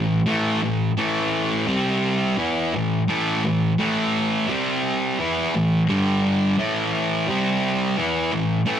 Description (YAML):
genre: rock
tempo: 86 BPM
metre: 4/4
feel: straight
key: unclear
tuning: A4 = 437 Hz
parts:
  - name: thick fuzz guitar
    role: solo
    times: 0.0-8.8 s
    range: G2 to E4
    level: -19 LUFS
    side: equal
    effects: distortion
room: moderate studio ambience, RT60 0.5 s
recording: rough rehearsal-room recording, tube saturation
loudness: -19 LUFS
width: side -9 dB against mid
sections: 0.0-6.6 A section; 6.6-8.8 A section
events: none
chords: 0.0 A5; 1.7 C5; 2.4 A5; 4.5 C5; 5.2 A5; 5.9 G5; 6.6 A5; 7.3 C5; 8.0 A5